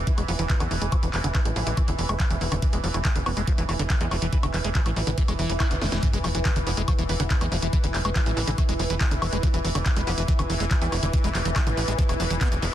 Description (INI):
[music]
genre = psychedelic trance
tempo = 141 BPM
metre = 4/4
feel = straight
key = E major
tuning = A4 = 440 Hz
[part]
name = bubbling stepped-filter texture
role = sustained chords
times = 0.0-12.7 s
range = E3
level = -32 LUFS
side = equal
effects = chorus, built-in reverb, sidechain pumping
[part]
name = tight sequencer bass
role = bass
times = 0.0-12.7 s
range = E1 to E2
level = -27 LUFS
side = equal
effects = none
[part]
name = liquid acid bass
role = riff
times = 0.1-12.7 s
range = D3 to E4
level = -30 LUFS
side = equal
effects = chorus, auto-pan, sidechain pumping, dub echo
[part]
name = electronic kick drum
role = drums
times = 0.1-12.5 s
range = none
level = -23 LUFS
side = equal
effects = none
[part]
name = techno drum kit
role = drums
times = 0.1-12.7 s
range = handclaps, hi-hat, snare drum, woodblock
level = -30 LUFS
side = equal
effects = none
[part]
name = resonant blip pluck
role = second line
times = 0.3-12.7 s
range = E3 to B3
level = -40 LUFS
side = right 4 dB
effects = none
[part]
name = swell and sub drop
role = sound effects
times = 5.4-7.7 s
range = none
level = -36 LUFS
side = equal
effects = none
[part]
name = granular cloud pad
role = texture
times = 7.4-12.7 s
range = E4 to E5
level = -34 LUFS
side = right 3 dB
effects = built-in reverb, sidechain pumping
[sound]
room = little or no reverb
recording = dense, heavily limited modern master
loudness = -22 LUFS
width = side -12 dB against mid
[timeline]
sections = 0.0-6.0 A section; 6.0-12.7 B section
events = filter sweep on acid bass 0.0-6.0; swell 5.4-6.0; band accent 5.6; drum fill 5.8; drop 6.0-12.7; impact 6.0-7.7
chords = 0.0 E5